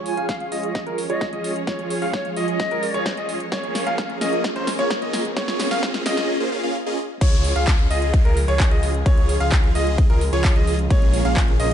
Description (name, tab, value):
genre	EDM, festival progressive house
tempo	130 BPM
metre	4/4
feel	straight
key	Db major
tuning	A4 = 440 Hz
part	warm studio string section	sustained chords	0.0-11.7 s	Db3 to Db5	-31 LUFS	right 2 dB	sidechain pumping
part	bright grand piano	arpeggios	0.0-11.7 s	Bb4 to F5	-28 LUFS	left 1 dB	sidechain pumping, low-pass filter, ping-pong delay
part	supersaw chords	riff	0.0-11.7 s	Bb3 to F5	-25 LUFS	right 2 dB	phaser, sidechain pumping, low-pass filter, ping-pong delay
part	riser and downlifter	sound effects	0.0-10.9 s	none	-36 LUFS	equal	none
part	bright reedy concert flute	melody	0.1-3.1 s	Db5 to Ab5	-30 LUFS	left 1 dB	ping-pong delay
part	big-room dance drum kit	drums	0.1-11.7 s	crash cymbal, handclaps, hi-hat, ride cymbal, snare drum	-28 LUFS	equal	none
part	electronic kick drum	drums	0.3-11.5 s	none	-18 LUFS	equal	high-pass filter on kick
part	wide detuned saw bass	bass	7.2-11.7 s	Bb1 to Db2	-22 LUFS	equal	chorus, sidechain pumping
room	light reverb, digital ambience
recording	dark, warm production, high-pass filter, nothing above 10.9 kHz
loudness	-18 LUFS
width	side -10 dB against mid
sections	0.0-7.2 A section; 7.2-11.7 B section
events	build-up 0.0-7.2; drum fill 0.0-6.3; filter sweep on supersaw synth 0.0-7.2; filter sweep on grand piano 0.0-7.2; filter sweep 0.0-7.2; drop 7.2-11.7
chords	0.0 Db; 3.5 Bbm7; 7.2 Db; 10.9 Bbm7